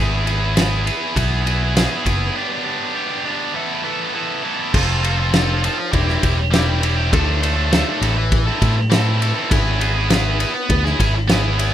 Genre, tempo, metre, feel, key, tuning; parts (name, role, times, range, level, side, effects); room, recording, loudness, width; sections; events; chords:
indie rock; 101 BPM; 4/4; straight; A4 = 440 Hz
heavy high-gain guitar; riff; 0.0-11.7 s; E3 to A4; -20 LUFS; right 1 dB; distortion
picked electric bass; bass; 0.0-11.7 s; E1 to A2; -19 LUFS; equal
loose indie drum kit; drums; 0.3-11.7 s; crash cymbal, kick drum, ride cymbal, snare drum; -20 LUFS; equal
little or no reverb; rough home demo mix; -16 LUFS; side -11 dB against mid
0.0-4.7 A section; 4.7-11.7 B section
break 2.3-4.7
0.0 E/G#; 2.3 G; 3.5 Esus4; 4.7 F; 5.9 C/E; 7.1 Dm; 8.0 Am; 9.5 E/G#